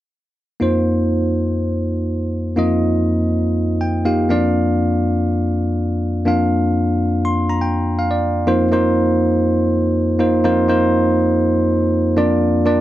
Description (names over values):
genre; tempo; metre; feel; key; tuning
pop; 122 BPM; 4/4; straight; unclear; A4 = 444 Hz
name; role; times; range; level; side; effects
bell-like tine electric piano; solo; 0.6-12.8 s; F2 to C6; -15 LUFS; equal; none
room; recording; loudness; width
light reverb; dry, close 1970s-style studio recording; -15 LUFS; side -14 dB against mid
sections
0.6-8.5 A section; 8.5-12.8 B section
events
tine electric piano fill 3.6-4.5, 7.0-8.5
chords
0.6 F7sus4; 4.3 Bb/F; 8.5 F7sus4; 12.2 Bb/F